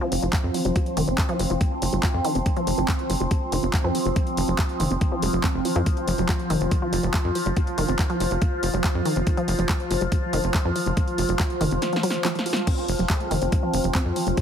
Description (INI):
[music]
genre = psychedelic trance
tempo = 141 BPM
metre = 4/4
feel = straight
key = unclear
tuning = A4 = 444 Hz
[part]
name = overtone-sweeping drone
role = sustained chords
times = 0.0-14.4 s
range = F3 to F4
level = -28 LUFS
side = right 1 dB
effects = chorus, built-in reverb, phaser, sidechain pumping
[part]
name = wide unison pluck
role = riff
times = 0.0-14.4 s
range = Eb3 to Gb4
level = -28 LUFS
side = equal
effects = auto-pan, sidechain pumping, tape echo
[part]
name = ethereal airy pad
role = texture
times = 0.2-14.4 s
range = F4 to F6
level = -30 LUFS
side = left 1 dB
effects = ensemble chorus, built-in reverb, sidechain pumping
[part]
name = tight sequencer bass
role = bass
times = 0.1-14.3 s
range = F1 to F2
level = -26 LUFS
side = equal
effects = none
[part]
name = techno drum kit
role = drums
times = 0.1-14.4 s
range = crash cymbal, handclaps, hi-hat, snare drum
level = -30 LUFS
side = equal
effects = overdrive, studio reverb
[part]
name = electronic kick drum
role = drums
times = 0.3-14.4 s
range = none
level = -23 LUFS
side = equal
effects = overdrive, studio reverb
[part]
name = vowel-sweep wobble bass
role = second line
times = 12.7-14.4 s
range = F3 to C4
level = -39 LUFS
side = left 3 dB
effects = none
[sound]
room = light reverb, digital ambience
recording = heavily compressed radio sound, multiband compression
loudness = -21 LUFS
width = side -8 dB against mid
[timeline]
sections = 0.0-14.4 A section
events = filter sweep on synth arpeggio sound 0.0-14.4; drum fill 11.8-12.7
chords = 0.0 F5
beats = 0.33 | 0.76 1.18 1.61 2.03 | 2.46 2.88 3.31 3.73 | 4.16 4.59 5.01 5.44 | 5.86 6.29 6.71 7.14 | 7.57 7.99 8.42 8.84 | 9.27 9.69 10.12 10.54 | 10.97 11.39 11.82 12.25 | 12.67 13.10 13.52 13.95 | 14.37